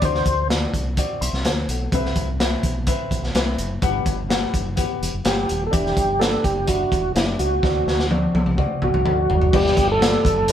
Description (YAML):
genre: uptempo 1960s-style soul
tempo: 126 BPM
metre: 4/4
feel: straight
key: G major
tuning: A4 = 442 Hz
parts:
  - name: mellow tonewheel organ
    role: melody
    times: 0.0-0.5, 5.3-10.5 s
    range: E4 to C5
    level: -21 LUFS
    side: right 1 dB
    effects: chorus vibrato, slow rotary speaker
  - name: warm baby grand piano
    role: accompaniment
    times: 0.0-10.5 s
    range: G2 to C6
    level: -27 LUFS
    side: left 4 dB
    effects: none
  - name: fingered electric bass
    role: bass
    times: 0.0-10.5 s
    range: Eb1 to D2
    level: -25 LUFS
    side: equal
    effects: none
  - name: crunchy breakbeat drum kit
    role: drums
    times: 0.0-10.5 s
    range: crash cymbal, hi-hat, kick drum, snare drum, toms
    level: -22 LUFS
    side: equal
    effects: none
room: light reverb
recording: band playing live in one room, faint mains hum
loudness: -18 LUFS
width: side -10 dB against mid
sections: 0.0-9.5 A section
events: drum fill 7.6-9.5; grand piano fill 8.1-9.5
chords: 0.0 D7; 1.9 Cmaj7; 3.8 Gmaj7; 5.7 Em7; 7.6 D7; 9.5 G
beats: | 0.02 0.50 0.97 1.45 | 1.93 2.40 2.88 3.35 | 3.83 4.30 4.78 5.25 | 5.73 6.21 6.68 7.16 | 7.63 8.11 8.58 9.06 | 9.53 10.01 10.48